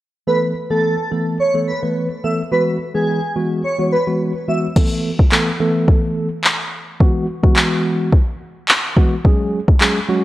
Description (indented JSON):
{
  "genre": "dance-pop",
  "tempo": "107 BPM",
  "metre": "4/4",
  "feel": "straight",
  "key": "A major",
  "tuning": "A4 = 440 Hz",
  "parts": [
    { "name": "airy dreamy lead", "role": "melody", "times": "0.3-4.6 s", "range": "G#4 to E5", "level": "-20 LUFS", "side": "right 1 dB", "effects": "chorus, phaser, sidechain pumping, digital delay" },
    { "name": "mellow tine electric piano", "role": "accompaniment", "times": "0.3-10.2 s", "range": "E3 to B4", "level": "-19 LUFS", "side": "equal", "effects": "medium stereo tremolo, sidechain pumping" },
    { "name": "smooth R&B drum kit", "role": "drums", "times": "4.8-9.9 s", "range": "crash cymbal, handclaps, kick drum", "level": "-14 LUFS", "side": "equal", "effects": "none" }
  ],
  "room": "moderate lush hall reverb, RT60 2.2 s",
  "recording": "worn, warbling old tape, cassette tape, warbly pitch drift",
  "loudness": "-15 LUFS",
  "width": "side -16 dB against mid",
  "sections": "0.3-4.8 A section; 4.8-10.2 B section",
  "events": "none",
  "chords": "0.3 Asus2; 2.5 Eadd9; 4.8 Asus2; 7.0 Eadd9; 9.2 F#sus2",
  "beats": "| 0.27 0.83 1.40 1.96 | 2.52 3.08 3.64 4.20 | 4.76 5.32 5.88 6.44 | 7.00 7.56 8.12 8.69 | 9.25 9.81"
}